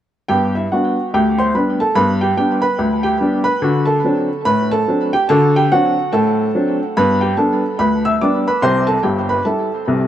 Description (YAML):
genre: ragtime piano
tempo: 72 BPM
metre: 2/4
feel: swing 60% on 16ths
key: G major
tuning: A4 = 436 Hz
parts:
  - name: clear upright piano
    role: solo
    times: 0.3-10.1 s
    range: G1 to E6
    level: -14 LUFS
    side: equal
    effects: tape echo
room: small room ambience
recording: dry, close 1970s-style studio recording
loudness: -14 LUFS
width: side -11 dB against mid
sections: 0.3-10.1 A section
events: none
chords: 0.3 G; 3.6 D7; 7.0 G; 8.6 C